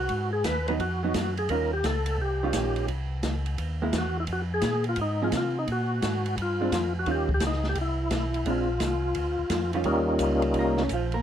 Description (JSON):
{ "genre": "soul jazz organ trio", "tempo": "172 BPM", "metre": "4/4", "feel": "swing 65% on 8ths", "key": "Eb mixolydian", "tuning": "A4 = 441 Hz", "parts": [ { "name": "overdriven tonewheel organ", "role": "melody", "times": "0.0-10.8 s", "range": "G3 to Cb5", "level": "-28 LUFS", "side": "left 1 dB", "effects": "slow rotary speaker, chorus vibrato" }, { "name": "mellow tonewheel organ", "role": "bass", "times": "0.0-11.2 s", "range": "Bb1 to C3", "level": "-30 LUFS", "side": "equal", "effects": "chorus vibrato, slow rotary speaker" }, { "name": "open jazz drum kit", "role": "drums", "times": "0.1-11.2 s", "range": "hi-hat, kick drum, ride cymbal, snare drum", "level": "-32 LUFS", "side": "equal", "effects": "none" }, { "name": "vintage hollow-body jazz guitar", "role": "accompaniment", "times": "0.7-11.2 s", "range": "Db3 to Bb4", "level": "-29 LUFS", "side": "right 4 dB", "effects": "none" } ], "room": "light reverb", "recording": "none", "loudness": "-24 LUFS", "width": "side -10 dB against mid", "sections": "0.0-9.9 A section; 9.9-11.2 B section", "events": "hollow-body jazz guitar solo 9.9-11.2", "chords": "0.1 Abm7; 1.5 Eb9; 2.9 C(#9); 4.3 Fm7; 5.7 Bb7(no3); 7.1 Eb9; 7.8 Cmaj7; 8.5 Bb9; 9.9 Eb9" }